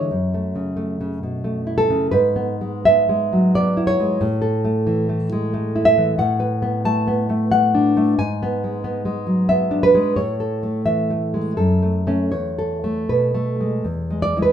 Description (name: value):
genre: romantic piece for solo classical guitar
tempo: 77-93 BPM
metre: 3/4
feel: rubato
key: A major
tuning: A4 = 440 Hz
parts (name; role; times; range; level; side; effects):
- nylon-string guitar; solo; 0.0-14.5 s; E2 to A5; -17 LUFS; equal; none
room: moderate large studio reverb, RT60 0.8 s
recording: band playing live in one room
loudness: -17 LUFS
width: side -9 dB against mid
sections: 0.0-14.5 A section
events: none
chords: 0.1 F#m7; 2.1 E/G#; 4.2 A; 6.2 Bm7/A; 8.2 G#m7b5; 10.2 A; 11.6 F#m; 12.3 Esus4; 13.8 E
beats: | 0.10 0.77 1.44 | 2.12 2.86 3.55 | 4.21 4.87 5.55 | 6.20 6.86 7.53 | 8.19 8.84 9.50 | 10.17 10.85 11.57 | 12.33 13.09 13.85